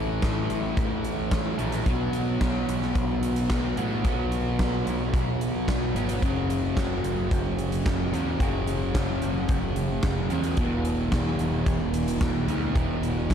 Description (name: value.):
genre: rock, shoegaze and dream pop.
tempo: 110 BPM.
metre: 4/4.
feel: straight.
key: unclear.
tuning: A4 = 436 Hz.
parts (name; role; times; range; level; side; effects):
fuzz guitar; riff; 0.0-13.3 s; E2 to B3; -27 LUFS; equal; distortion, wide subtle chorus.
growling picked electric bass; bass; 0.0-13.3 s; E1 to A2; -30 LUFS; equal; overdrive.
huge arena drum kit; drums; 0.2-13.3 s; hi-hat, kick drum, snare drum; -28 LUFS; equal; none.
room: little or no reverb.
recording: dark, warm production.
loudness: -23 LUFS.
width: side -8 dB against mid.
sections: 0.0-13.3 A section.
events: none.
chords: 0.0 A5; 1.9 B5; 6.2 F#5; 10.6 E5.